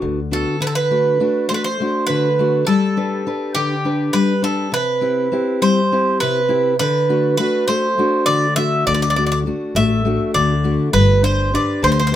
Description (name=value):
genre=greek folk, Greek bouzouki band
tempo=204 BPM (eighths)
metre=7/8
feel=straight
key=unclear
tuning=A4 = 439 Hz
part: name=fingerpicked steel-string acoustic guitar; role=accompaniment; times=0.0-12.2 s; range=C3 to B4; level=-19 LUFS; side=left 2 dB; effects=none
part: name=upright bass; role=bass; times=0.0-0.4, 8.9-12.2 s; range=G1 to D2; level=-20 LUFS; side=equal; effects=none
part: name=Greek bouzouki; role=melody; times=0.3-12.1 s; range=G4 to E5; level=-18 LUFS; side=right 2 dB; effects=none
room=light reverb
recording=minimal, uncompressed stereo recording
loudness=-15 LUFS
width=side -11 dB against mid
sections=0.6-12.2 A section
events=none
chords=0.0 D6; 0.6 D; 2.7 G; 4.7 C; 6.8 D; 10.9 G